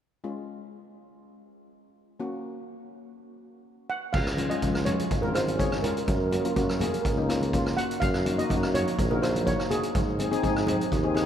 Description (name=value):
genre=calypso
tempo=124 BPM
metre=4/4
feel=straight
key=Db major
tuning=A4 = 440 Hz
part: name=steel pan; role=accompaniment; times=0.2-11.3 s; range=Ab3 to Ab4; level=-30 LUFS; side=left 3 dB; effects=none
part: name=steel pan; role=melody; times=3.9-11.1 s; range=Ab4 to Gb5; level=-31 LUFS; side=right 3 dB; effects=none
part: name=clear tuba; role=bass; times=4.1-11.3 s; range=Ab1 to Ab2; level=-29 LUFS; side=right 1 dB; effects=none
part: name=street-band drum kit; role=drums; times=4.1-11.3 s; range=crash cymbal, hi-hat, kick drum, rim click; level=-30 LUFS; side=equal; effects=none
part: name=congas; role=percussion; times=4.4-10.8 s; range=none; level=-35 LUFS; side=right 2 dB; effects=none
room=moderate cathedral reverb, RT60 5.1 s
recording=in a vast, echoing space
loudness=-24 LUFS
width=side -9 dB against mid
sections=0.2-4.1 A section; 4.1-11.3 B section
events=none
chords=0.2 Db; 2.2 Gb; 4.1 Db; 6.1 Gb; 8.0 Ebm/Gb; 9.9 Ab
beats=| 0.24 0.73 1.22 1.70 | 2.19 2.68 3.16 3.65 | 4.13 4.62 5.11 5.59 | 6.08 6.56 7.04 7.53 | 8.01 8.50 8.98 9.47 | 9.95 10.43 10.92